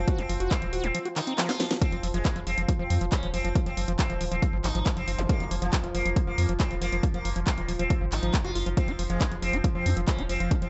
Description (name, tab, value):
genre	psychedelic trance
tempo	138 BPM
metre	4/4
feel	straight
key	F phrygian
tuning	A4 = 440 Hz
part	sitar	melody	0.0-10.7 s	F3 to F4	-36 LUFS	equal	phaser, sidechain pumping, digital delay
part	overtone-sweeping drone	sustained chords	0.0-10.7 s	F3	-40 LUFS	equal	chorus, built-in reverb, sidechain pumping
part	round analog bass	bass	0.0-10.7 s	Eb1 to F2	-32 LUFS	equal	none
part	screaming distorted acid line	riff	0.1-10.7 s	Eb3 to Gb4	-36 LUFS	equal	distortion, chorus, sidechain pumping, tape echo
part	electronic kick drum	drums	0.1-10.6 s	none	-28 LUFS	equal	none
part	techno drum kit	drums	0.1-10.7 s	handclaps, hi-hat, snare drum	-36 LUFS	equal	none
part	zap	sound effects	5.2-5.3 s	none	-40 LUFS	equal	none
room	little or no reverb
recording	nothing above 8.0 kHz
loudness	-27 LUFS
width	mono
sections	0.0-10.7 A section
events	drum fill 1.4-1.8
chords	0.0 F5